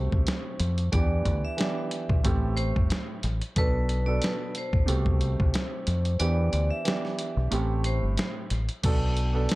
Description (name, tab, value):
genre	hip hop, boom-bap hip-hop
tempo	91 BPM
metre	4/4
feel	swing 54% on 16ths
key	A minor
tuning	A4 = 442 Hz
part	vibraphone with hard mallets	melody	0.0-8.0 s	B4 to E5	-35 LUFS	left 1 dB	high-pass filter, low-pass filter, tape echo
part	dark concert grand piano	accompaniment	0.0-9.6 s	A2 to A4	-32 LUFS	right 3 dB	cassette tape, high-pass filter, low-pass filter
part	deep dub fingered electric bass	bass	0.0-9.5 s	G1 to F2	-26 LUFS	equal	none
part	dusty soul sampler-style drum kit	drums	0.1-9.6 s	crash cymbal, hi-hat, kick drum, snare drum	-28 LUFS	equal	none
room	digital ambience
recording	echo-heavy mix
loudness	-24 LUFS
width	side -20 dB against mid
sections	0.0-8.8 A section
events	kick muted 6.2-8.8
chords	0.0 Am7/C; 0.9 Em7; 2.2 Am7; 3.6 Bm7; 4.9 Am7/C; 6.2 Em7; 7.5 Am7; 8.8 Bm7